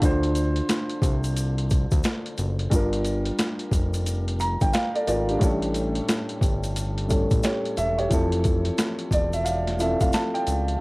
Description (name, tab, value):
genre	hip hop, boom-bap hip-hop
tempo	89 BPM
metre	4/4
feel	swing 62% on 16ths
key	unclear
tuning	A4 = 445 Hz
part	dark grand piano	accompaniment	0.0-10.8 s	A2 to Bb5	-26 LUFS	equal	cassette tape, high-pass filter, low-pass filter
part	fat analog bass	bass	0.0-10.8 s	E1 to D2	-26 LUFS	equal	tube saturation
part	boom bap sampler-style drum kit	drums	0.0-10.8 s	hi-hat, kick drum, snare drum	-25 LUFS	equal	overdrive, cassette tape
part	egg shaker	percussion	0.0-10.7 s	none	-41 LUFS	left 2 dB	none
room	little or no reverb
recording	home recording on cassette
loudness	-21 LUFS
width	side -24 dB against mid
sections	0.0-10.8 A section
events	none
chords	0.0 Dm7; 2.7 Gm7; 5.4 A7; 8.1 Fmaj7